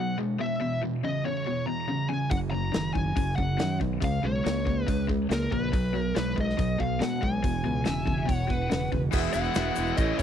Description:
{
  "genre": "classic rock",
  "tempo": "141 BPM",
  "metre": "4/4",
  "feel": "straight",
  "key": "unclear",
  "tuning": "A4 = 440 Hz",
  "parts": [
    { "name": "bluesy overdriven lead guitar", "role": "melody", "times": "0.0-10.2 s", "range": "A#4 to A#5", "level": "-32 LUFS", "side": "left 2 dB", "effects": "distortion" },
    { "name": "overdriven electric guitar", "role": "riff", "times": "0.0-10.2 s", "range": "E2 to E4", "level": "-31 LUFS", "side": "left 11 dB", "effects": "none" },
    { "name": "sludgy distorted guitar", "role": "riff", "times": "0.0-10.2 s", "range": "E2 to E4", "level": "-32 LUFS", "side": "right 10 dB", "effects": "overdrive" },
    { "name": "modern bright fingered electric bass", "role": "bass", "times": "2.3-10.2 s", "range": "E1 to B2", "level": "-31 LUFS", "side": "equal", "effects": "none" },
    { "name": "big rock drum kit", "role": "drums", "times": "2.3-10.2 s", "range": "crash cymbal, hi-hat, kick drum, ride cymbal, snare drum", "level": "-30 LUFS", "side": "equal", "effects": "none" },
    { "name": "overdriven slide guitar", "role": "second line", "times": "7.9-9.0 s", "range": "B4 to E5", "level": "-36 LUFS", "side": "equal", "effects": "none" },
    { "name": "clear upright piano", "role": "accompaniment", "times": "9.1-10.2 s", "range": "E4 to E5", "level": "-34 LUFS", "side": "right 13 dB", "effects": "none" },
    { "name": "egg shaker", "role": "percussion", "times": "9.1-10.2 s", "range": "none", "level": "-47 LUFS", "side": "left 18 dB", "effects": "none" }
  ],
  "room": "little or no reverb",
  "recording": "dry, close 1970s-style studio recording",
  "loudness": "-25 LUFS",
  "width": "side -9 dB against mid",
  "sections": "0.0-9.1 A section; 9.1-10.2 B section",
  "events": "none",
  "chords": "0.0 B5; 0.6 E5; 2.3 F#; 4.0 C#5; 5.7 B; 7.4 E; 9.1 Eadd9"
}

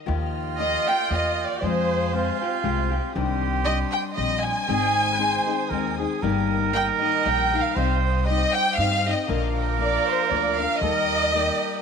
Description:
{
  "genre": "mexican folk, mariachi",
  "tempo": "118 BPM",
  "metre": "3/4",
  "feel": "swing 54% on 8ths",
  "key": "Eb major",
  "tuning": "A4 = 438 Hz",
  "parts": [
    { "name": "nylon-string guitar", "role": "accompaniment", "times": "0.0-11.8 s", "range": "G2 to Bb4", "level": "-28 LUFS", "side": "left 12 dB", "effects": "none" },
    { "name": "mellow trumpet", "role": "second line", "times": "0.1-11.8 s", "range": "F4 to C5", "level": "-27 LUFS", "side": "right 13 dB", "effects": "none" },
    { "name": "rich chamber violin section", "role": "sustained chords", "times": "0.1-11.8 s", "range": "D4 to G6", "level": "-36 LUFS", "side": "equal", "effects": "none" },
    { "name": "upright bass", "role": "bass", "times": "0.1-11.5 s", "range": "G1 to G2", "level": "-27 LUFS", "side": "equal", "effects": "none" },
    { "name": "rich chamber violin section", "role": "melody", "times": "0.6-11.8 s", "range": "C5 to Ab5", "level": "-24 LUFS", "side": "right 1 dB", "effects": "tape echo" }
  ],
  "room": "light reverb, studio reverb",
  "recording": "1960s-style stereo with parts hard left and right",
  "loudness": "-20 LUFS",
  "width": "side -6 dB against mid",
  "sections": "0.1-11.8 A section",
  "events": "none",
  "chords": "0.1 Ebadd9; 1.6 Fmadd9; 3.2 Cmadd9; 4.7 Ab; 6.2 Eb/G; 7.8 Cm; 9.3 Bb; 10.8 Eb"
}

